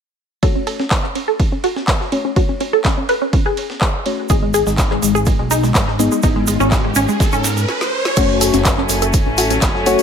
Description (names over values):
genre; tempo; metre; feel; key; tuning
progressive house; 124 BPM; 4/4; straight; F# minor; A4 = 441 Hz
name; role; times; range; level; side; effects
wide unison pluck; arpeggios; 0.4-10.0 s; G#3 to B4; -19 LUFS; equal; phaser, sidechain pumping, ping-pong delay
deep mellow chord stab; stabs; 0.4-10.0 s; A3 to D#5; -21 LUFS; left 4 dB; analog chorus, vintage 12-bit sampler grit, sidechain pumping, ping-pong delay
breakbeat sampler-style drum kit; drums; 0.4-10.0 s; ride cymbal, snare drum; -29 LUFS; right 3 dB; high-pass filter on cymbals, high-pass filter on snare, high-pass filter on room
electronic kick drum; drums; 0.4-9.7 s; none; -17 LUFS; equal; none
deep house drum kit; drums; 0.9-10.0 s; crash cymbal, handclaps, hi-hat, snare drum; -21 LUFS; equal; none
fat analog bass; bass; 4.3-10.0 s; F#1 to G#2; -21 LUFS; equal; tube saturation, sidechain pumping
egg shaker; percussion; 4.3-10.0 s; none; -25 LUFS; right 7 dB; none
riser; sound effects; 5.7-8.2 s; none; -24 LUFS; right 2 dB; none
rich chamber string section; sustained chords; 8.2-10.0 s; F#3 to C#4; -21 LUFS; left 1 dB; sidechain pumping, low-pass filter
room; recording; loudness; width
light reverb; none; -14 LUFS; side -7 dB against mid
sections
0.4-8.2 A section; 8.2-10.0 B section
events
filter sweep on synth pluck 0.4-8.2, 8.2-10.0; riser 5.7-8.2; drum fill 7.7-8.2; stop 7.7-8.2; filter sweep on string section 8.2-10.0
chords
0.4 F#m; 4.3 G#m; 8.2 F#m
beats
| 0.43 0.91 1.40 1.88 | 2.36 2.85 3.33 3.81 | 4.30 4.78 5.27 5.75 | 6.23 6.72 7.20 7.69 | 8.17 8.65 9.14 9.62